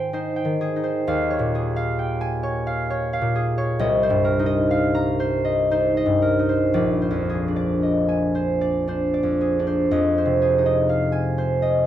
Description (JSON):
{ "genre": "classical, solo harp piece", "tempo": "56-67 BPM", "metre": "3/4", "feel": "rubato", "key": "unclear", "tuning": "A4 = 440 Hz", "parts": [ { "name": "concert harp", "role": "solo", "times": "0.0-11.9 s", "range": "Bb1 to Bb5", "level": "-19 LUFS", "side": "equal", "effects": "none" } ], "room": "light reverb", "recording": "dark, warm production", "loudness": "-19 LUFS", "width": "side -11 dB against mid", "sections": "0.0-11.9 A section", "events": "none", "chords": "0.0 Abmaj7; 1.1 Eb9sus4; 3.8 Cm7; 6.8 Bb9; 9.9 Fm7" }